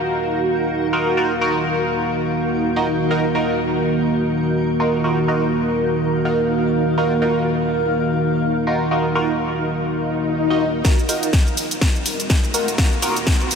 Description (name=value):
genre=bass house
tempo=124 BPM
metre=4/4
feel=swing 58% on 16ths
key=Eb minor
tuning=A4 = 443 Hz
part: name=dark analog pad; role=sustained chords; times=0.0-13.6 s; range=Eb3 to F5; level=-21 LUFS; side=right 1 dB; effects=chorus, sidechain pumping
part: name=granular cloud pad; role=texture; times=0.0-13.6 s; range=Eb4 to F5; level=-24 LUFS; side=left 1 dB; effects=built-in reverb, lush chorus, sidechain pumping
part: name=band-passed chord stab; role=stabs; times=0.9-13.2 s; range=Eb4 to Eb5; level=-23 LUFS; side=right 1 dB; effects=phaser, analog chorus, cassette tape, sidechain pumping, diffuse ambient delay
part: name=swell and riser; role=sound effects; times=10.0-13.6 s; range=none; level=-26 LUFS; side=left 4 dB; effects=none
part: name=electronic kick drum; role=drums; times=10.8-13.4 s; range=none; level=-17 LUFS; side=left 1 dB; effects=studio reverb
part: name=house drum kit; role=drums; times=10.8-13.6 s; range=hi-hat, shaker, snare drum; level=-21 LUFS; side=equal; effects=studio reverb
room=wet huge ambient reverb, RT60 6.5 s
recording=dreamy mix soaked in reverb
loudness=-17 LUFS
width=side -6 dB against mid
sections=0.0-10.8 A section; 10.8-13.6 B section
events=filter sweep on synth stab 0.0-10.8, 10.8-13.6; swell 10.0-10.8; build-up 10.8-13.6; drum fill 10.8-13.6; filter sweep 10.8-13.6; riser 11.0-13.6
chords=0.0 Ebmadd9